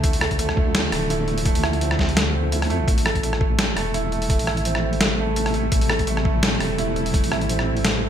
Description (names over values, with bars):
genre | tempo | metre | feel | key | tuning
half-time drum and bass | 169 BPM | 4/4 | swing 55% on 16ths, half-time | A minor | A4 = 439 Hz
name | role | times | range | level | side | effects
bowed-like drone | sustained chords | 0.0-8.1 s | C3 to E4 | -28 LUFS | equal | built-in reverb, vintage 12-bit sampler grit, sidechain pumping
felt-muted upright piano | arpeggios | 0.0-8.1 s | A3 to A4 | -26 LUFS | right 4 dB | ping-pong delay
deep soft wobble bass | bass | 0.0-8.1 s | D1 to F2 | -25 LUFS | left 1 dB | chorus
boom bap sampler-style drum kit | drums | 0.0-7.9 s | hi-hat, rim click, snare drum | -24 LUFS | equal | studio reverb, gated reverb
electronic kick drum | drums | 0.0-7.2 s | none | -22 LUFS | left 1 dB | studio reverb
room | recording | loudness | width
light reverb | bright 1980s-style digital production | -19 LUFS | side -9 dB against mid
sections
0.0-8.1 A section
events
none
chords
0.0 Dm; 2.9 Am7